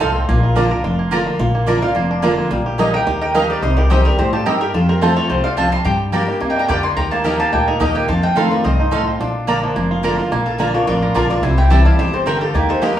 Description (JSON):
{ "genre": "bluegrass", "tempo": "215 BPM", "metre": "4/4", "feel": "straight", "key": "Bb major", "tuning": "A4 = 442 Hz", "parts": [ { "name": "mandolin", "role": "melody", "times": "0.0-13.0 s", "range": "F4 to D6", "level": "-21 LUFS", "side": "equal", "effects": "none" }, { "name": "lap resonator guitar", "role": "second line", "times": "0.0-13.0 s", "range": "D4 to Bb5", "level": "-26 LUFS", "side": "left 3 dB", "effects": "none" }, { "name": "picked steel-string acoustic guitar", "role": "accompaniment", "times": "0.0-13.0 s", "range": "F2 to G4", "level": "-20 LUFS", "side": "left 1 dB", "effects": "none" }, { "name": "bluegrass banjo", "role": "arpeggios", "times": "0.0-13.0 s", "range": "F3 to Bb4", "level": "-22 LUFS", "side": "right 2 dB", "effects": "none" }, { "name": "mandolin", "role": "stabs", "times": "0.0-12.9 s", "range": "Bb3 to C6", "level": "-22 LUFS", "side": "right 4 dB", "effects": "none" }, { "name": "upright bass", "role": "bass", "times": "0.0-13.0 s", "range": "F1 to G2", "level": "-19 LUFS", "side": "equal", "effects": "none" } ], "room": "wet studio reverb, RT60 0.7 s", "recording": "band playing live in one room, studio reverb", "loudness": "-14 LUFS", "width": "side -11 dB against mid", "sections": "0.0-1.4 A section; 1.4-10.3 A section; 10.3-13.0 B section", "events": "none", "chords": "0.3 Bb; 2.5 Eb/Bb; 3.6 Cm; 4.7 F; 5.9 Gm; 7.0 Eb; 8.1 F7; 9.2 Bb; 11.4 C" }